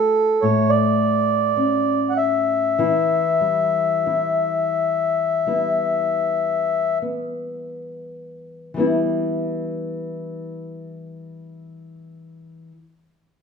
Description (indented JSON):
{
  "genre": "celtic folk, Celtic slow air",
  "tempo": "34-54 BPM",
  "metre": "4/4",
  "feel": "rubato",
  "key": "E dorian",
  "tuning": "A4 = 438 Hz",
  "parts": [
    { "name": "mellow accordion", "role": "melody", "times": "0.0-7.0 s", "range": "A4 to F#5", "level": "-19 LUFS", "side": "left 1 dB", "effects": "none" },
    { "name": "nylon-string guitar", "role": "accompaniment", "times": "0.0-12.8 s", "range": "A2 to F#4", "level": "-24 LUFS", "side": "left 2 dB", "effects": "none" }
  ],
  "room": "wet recital hall reverb, RT60 1.6 s",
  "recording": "minimal, uncompressed stereo recording",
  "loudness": "-18 LUFS",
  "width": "side -6 dB against mid",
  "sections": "0.0-8.8 A section; 8.8-13.4 B section",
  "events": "slowing down 0.0-8.8",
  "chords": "0.4 A; 2.8 Em"
}